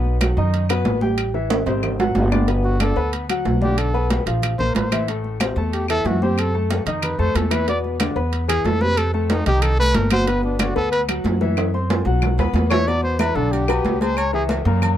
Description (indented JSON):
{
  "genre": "Afro-Cuban jazz",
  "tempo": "185 BPM",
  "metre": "4/4",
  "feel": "straight",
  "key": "G major",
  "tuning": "A4 = 436 Hz",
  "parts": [
    { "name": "clear upright piano", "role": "accompaniment", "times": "0.0-14.9 s", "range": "A2 to C6", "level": "-24 LUFS", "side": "left 2 dB", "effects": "none" },
    { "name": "upright bass", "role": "bass", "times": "0.0-15.0 s", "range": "G1 to F#2", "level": "-21 LUFS", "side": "equal", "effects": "none" },
    { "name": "congas", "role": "percussion", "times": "0.0-15.0 s", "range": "none", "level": "-25 LUFS", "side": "equal", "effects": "none" },
    { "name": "claves", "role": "percussion", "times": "0.2-15.0 s", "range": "none", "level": "-30 LUFS", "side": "left 6 dB", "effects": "none" },
    { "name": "timbales and agogo bells", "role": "percussion", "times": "0.2-15.0 s", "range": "none", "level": "-26 LUFS", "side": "right 4 dB", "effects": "none" },
    { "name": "breathy trumpet", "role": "melody", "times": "2.6-14.4 s", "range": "C4 to D5", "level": "-23 LUFS", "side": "equal", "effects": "none" }
  ],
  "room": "little or no reverb",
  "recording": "close, detailed microphones",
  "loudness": "-17 LUFS",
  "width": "side -11 dB against mid",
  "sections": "0.0-2.5 A section; 2.5-12.9 B section; 12.9-15.0 B section",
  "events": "drum fill 1.5-2.5, 11.6-12.9; trumpet solo 2.5-15.0",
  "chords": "0.0 B; 1.2 Am7; 1.8 Ab7; 2.5 Gmaj9; 3.8 Bm7b5; 4.4 Bbsus2; 5.1 Am; 6.4 F#dim; 7.0 F7; 7.7 E5; 9.0 F9; 10.3 Gmaj7; 11.6 Cmaj7#11; 12.2 B; 12.9 Em7; 14.2 C#madd11",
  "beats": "0.21 0.53 0.86 | 1.18 1.51 1.83 2.16 | 2.48 2.81 3.13 3.46 | 3.78 4.11 4.43 4.75 | 5.08 5.40 5.73 6.05 | 6.38 6.70 7.03 7.35 | 7.68 8.00 8.33 8.65 | 8.98 9.30 9.62 9.95 | 10.28 10.60 10.92 11.25 | 11.57 11.90 12.22 12.55 | 12.87 13.20 13.52 13.85 | 14.17 14.49 14.82"
}